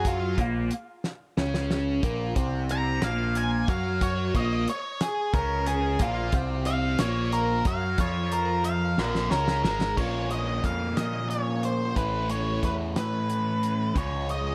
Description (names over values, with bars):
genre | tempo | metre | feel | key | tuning
psychedelic rock | 60 BPM (dotted quarters) | 6/8 | straight | unclear | A4 = 440 Hz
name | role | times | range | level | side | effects
octave-fuzz lead guitar | melody | 0.0-14.5 s | F4 to Bb5 | -32 LUFS | equal | distortion, analog delay
biting overdriven guitar | riff | 0.0-14.5 s | Ab2 to Gb4 | -32 LUFS | equal | phaser
growling picked electric bass | bass | 0.0-14.5 s | Ab1 to Bb2 | -32 LUFS | equal | overdrive
damped 70s drum kit | drums | 0.0-14.4 s | crash cymbal, hi-hat, kick drum, snare drum | -31 LUFS | equal | none
room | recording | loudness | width
light reverb, studio reverb | none | -27 LUFS | mono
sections
0.0-10.0 A section; 10.0-14.5 B section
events
lead electric guitar solo 0.0-10.0; drum fill 1.0-2.0, 9.0-10.0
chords
0.0 Bbm; 12.0 A; 14.0 Db